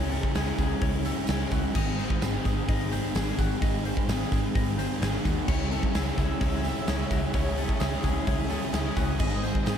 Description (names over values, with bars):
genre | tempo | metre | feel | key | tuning
rock, shoegaze and dream pop | 129 BPM | 4/4 | straight | unclear | A4 = 440 Hz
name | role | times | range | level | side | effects
direct-recorded clean electric guitar | arpeggios | 0.0-9.8 s | F#4 to D#5 | -38 LUFS | left 12 dB | analog chorus, digital delay
crunchy overdriven guitar | riff | 0.0-9.8 s | G#2 to E4 | -32 LUFS | left 10 dB | wide subtle chorus
overdriven semi-hollow guitar | riff | 0.0-9.8 s | G#2 to G#4 | -32 LUFS | right 13 dB | reverse reverb
vintage muted picked electric bass | bass | 0.0-9.8 s | G#1 to D#2 | -31 LUFS | equal | none
huge arena drum kit | drums | 0.1-9.8 s | crash cymbal, hi-hat, kick drum, snare drum | -29 LUFS | equal | none
tambourine | percussion | 0.4-9.8 s | none | -48 LUFS | right 12 dB | none
hollow soft pad | sustained chords | 5.5-9.8 s | B#4 to E6 | -37 LUFS | equal | chorus
room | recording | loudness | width
studio ambience | dark, warm production | -24 LUFS | side -8 dB against mid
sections
0.0-9.8 A section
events
none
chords
0.0 C#m; 1.8 G#; 5.5 C#m; 9.2 G#